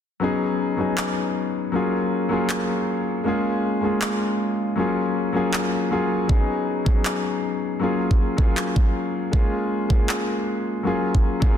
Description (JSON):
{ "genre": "future bass", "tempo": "158 BPM", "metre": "4/4", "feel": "swing 56% on 16ths, half-time", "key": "unclear", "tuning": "A4 = 441 Hz", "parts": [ { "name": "warm concert grand piano", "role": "accompaniment", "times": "0.2-11.6 s", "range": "Gb3 to Ab4", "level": "-22 LUFS", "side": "left 2 dB", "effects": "sidechain pumping, ping-pong delay" }, { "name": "electronic handclaps", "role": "drums", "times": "1.0-10.2 s", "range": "none", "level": "-30 LUFS", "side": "equal", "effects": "none" }, { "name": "electronic kick drum", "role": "drums", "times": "6.3-11.5 s", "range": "none", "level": "-18 LUFS", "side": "right 1 dB", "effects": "none" } ], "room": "moderate lush hall reverb, RT60 2.1 s", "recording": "dense, heavily limited modern master", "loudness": "-20 LUFS", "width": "side -9 dB against mid", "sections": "0.2-11.6 A section", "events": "none", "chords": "0.2 Db9sus4; 1.7 Gbmaj9; 3.3 Bbm7; 4.8 Gbmaj9; 6.3 Db9sus4; 7.8 Gbmaj9; 9.3 Bbm7; 10.9 Gbmaj9" }